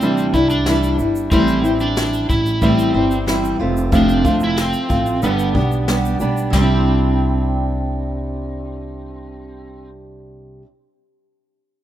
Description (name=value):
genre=acoustic pop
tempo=92 BPM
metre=4/4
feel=straight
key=C major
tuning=A4 = 439 Hz
part: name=overdriven slide guitar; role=melody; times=0.0-9.9 s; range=B3 to E4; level=-23 LUFS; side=equal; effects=none
part: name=fingerpicked steel-string acoustic guitar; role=accompaniment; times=0.0-10.7 s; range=F2 to G4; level=-18 LUFS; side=right 1 dB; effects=none
part: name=upright bass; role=bass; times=0.0-10.6 s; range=F1 to D2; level=-22 LUFS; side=equal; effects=none
part: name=jazz brush drum kit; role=drums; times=0.0-6.7 s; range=kick drum, shaker, snare drum, splash cymbal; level=-23 LUFS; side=equal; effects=none
room=small room ambience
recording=rough home demo mix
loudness=-15 LUFS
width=side -12 dB against mid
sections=0.0-6.5 A section; 6.5-9.1 B section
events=none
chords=0.0 Cadd9; 1.3 Am7; 3.6 F; 5.2 G; 6.5 Cadd9